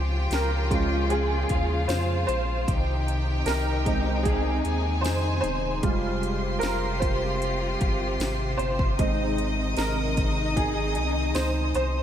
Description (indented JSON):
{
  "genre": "pop ballad",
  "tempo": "76 BPM",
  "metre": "4/4",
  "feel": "straight",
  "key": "Ab major",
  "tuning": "A4 = 440 Hz",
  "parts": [
    { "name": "rich studio violin section", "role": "second line", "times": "0.0-12.0 s", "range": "F4 to Eb6", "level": "-32 LUFS", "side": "equal", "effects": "ping-pong delay" },
    { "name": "clear baby grand piano", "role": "accompaniment", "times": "0.0-12.0 s", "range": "G3 to C5", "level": "-29 LUFS", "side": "right 2 dB", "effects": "ensemble chorus" },
    { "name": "muted studio string section", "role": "sustained chords", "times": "0.0-12.0 s", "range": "C3 to G4", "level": "-31 LUFS", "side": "left 2 dB", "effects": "none" },
    { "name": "warm sub bass", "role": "bass", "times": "0.0-12.0 s", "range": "Eb1 to F2", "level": "-28 LUFS", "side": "equal", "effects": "none" },
    { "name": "house drum kit", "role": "drums", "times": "0.3-11.9 s", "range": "hi-hat, kick drum, snare drum", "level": "-30 LUFS", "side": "equal", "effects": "none" },
    { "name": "tambourine", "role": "percussion", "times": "0.3-11.5 s", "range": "none", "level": "-45 LUFS", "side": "left 9 dB", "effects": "none" }
  ],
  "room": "moderate huge ambient reverb, RT60 5.1 s",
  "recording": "dreamy mix soaked in reverb",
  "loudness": "-23 LUFS",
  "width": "side -10 dB against mid",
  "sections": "0.0-12.0 A section",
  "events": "grand piano solo 0.0-12.0",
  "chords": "0.0 Db; 2.7 Ab/C; 5.8 Fmadd9; 9.0 Ab"
}